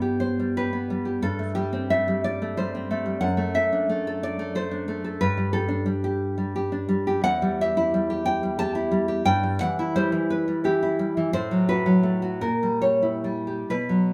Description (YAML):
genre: romantic piece for solo classical guitar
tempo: 45-63 BPM (dotted quarters)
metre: 6/8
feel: rubato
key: G major, E minor from 7.2 s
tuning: A4 = 439 Hz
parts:
  - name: nylon-string guitar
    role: solo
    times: 0.0-14.1 s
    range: E2 to A5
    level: -24 LUFS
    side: equal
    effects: none
room: moderate studio reverb, RT60 0.7 s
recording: band playing live in one room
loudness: -25 LUFS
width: mono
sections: 0.0-14.1 A section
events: none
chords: 0.0 G; 1.2 Am7/G; 3.2 D7/F#; 5.2 G5; 7.2 Em; 9.3 Em/G; 11.3 Am69; 12.4 A#dim7